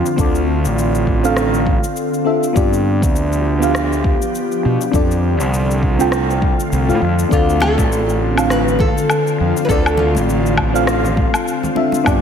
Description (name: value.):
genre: sunset chillout.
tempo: 101 BPM.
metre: 4/4.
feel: swing 57% on 16ths.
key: D dorian.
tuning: A4 = 440 Hz.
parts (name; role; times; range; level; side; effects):
mellow FM electric piano; accompaniment; 0.0-12.2 s; B3 to G5; -19 LUFS; moving between left 6 dB and right 6 dB; chorus, phaser, auto-pan, low-pass filter, tape echo.
ethereal airy pad; sustained chords; 0.0-12.2 s; B2 to G4; -22 LUFS; left 2 dB; ensemble chorus, built-in reverb.
electronic cabasa, rim click and woodblock; drums; 0.1-12.2 s; none; -24 LUFS; left 2 dB; slapback echo.
fuzz fingered electric bass; bass; 0.2-12.2 s; A1 to B2; -18 LUFS; equal; overdrive.
electronic kick drum; drums; 0.2-12.2 s; none; -18 LUFS; equal; none.
nylon-string guitar; melody; 7.3-11.7 s; F4 to B4; -20 LUFS; equal; tape echo.
congas; percussion; 7.6-12.0 s; none; -27 LUFS; left 2 dB; slapback echo.
room: moderate lush hall reverb, RT60 1.8 s, digital ambience.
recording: big arena sound.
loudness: -14 LUFS.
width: side -7 dB against mid.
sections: 0.0-12.2 A section.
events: none.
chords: 0.0 Dm7; 2.6 G7; 4.9 F6; 7.3 Dm7.